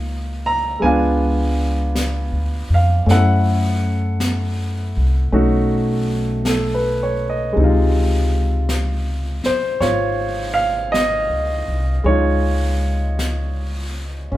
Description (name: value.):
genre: jazz ballad.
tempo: 53 BPM.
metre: 4/4.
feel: swing 69% on 8ths.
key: Db major.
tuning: A4 = 440 Hz.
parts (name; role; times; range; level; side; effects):
warm baby grand piano; accompaniment; 0.0-14.4 s; C3 to Bb5; -20 LUFS; equal; none.
upright bass; bass; 0.0-14.4 s; Ab1 to Gb2; -19 LUFS; equal; none.
jazz brush drum kit; drums; 0.8-14.4 s; brushed snare drum, hi-hat, snare drum; -28 LUFS; left 1 dB; none.
room: moderate large studio reverb, RT60 0.9 s.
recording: heard from further back in the room.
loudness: -16 LUFS.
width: side -15 dB against mid.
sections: 0.0-14.4 A section.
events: none.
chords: 0.0 Db6; 0.8 Db7b9; 3.1 Gbm7; 5.3 Cb9; 7.6 Dbmaj9.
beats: 0.82 1.96 | 3.08 4.21 5.34 6.46 | 7.57 8.69 9.81 10.93 | 12.05 13.18 14.31.